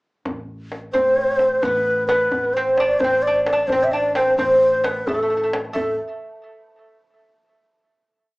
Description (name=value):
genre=Persian modal ensemble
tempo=87 BPM (dotted quarters)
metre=6/8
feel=straight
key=unclear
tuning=A4 = 440 Hz
part: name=upright bass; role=bass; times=0.3-6.0 s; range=A1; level=-35 LUFS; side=equal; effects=none
part: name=tombak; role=percussion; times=0.3-6.0 s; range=none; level=-30 LUFS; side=equal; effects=none
part: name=breathy mellow low ney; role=melody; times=0.9-6.0 s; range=A4 to E5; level=-18 LUFS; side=equal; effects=none
part: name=lute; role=second line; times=0.9-6.0 s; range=A3 to D4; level=-22 LUFS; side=right 1 dB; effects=none
room=wet small room reverb, RT60 0.6 s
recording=heard from further back in the room, small speaker sound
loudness=-16 LUFS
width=side -24 dB against mid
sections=0.3-5.7 A section; 5.7-7.1 final note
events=none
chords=none